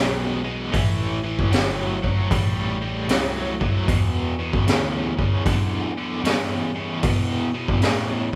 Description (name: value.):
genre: blues rock power trio and southern rock.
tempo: 76 BPM.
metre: 4/4.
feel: swing 66% on 8ths.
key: E minor.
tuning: A4 = 440 Hz.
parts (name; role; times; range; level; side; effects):
cranked stack guitar; riff; 0.0-8.4 s; E2 to G#3; -28 LUFS; equal; overdrive, tremolo.
vintage muted picked electric bass; bass; 0.0-8.4 s; G1 to B2; -32 LUFS; equal; none.
raw garage drum kit; drums; 0.7-8.1 s; hi-hat, kick drum, snare drum; -24 LUFS; equal; none.
room: light reverb.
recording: band playing live in one room.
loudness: -23 LUFS.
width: mono.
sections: 0.0-8.4 A section.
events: none.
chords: 0.0 B5; 0.7 Am7; 3.9 Em7.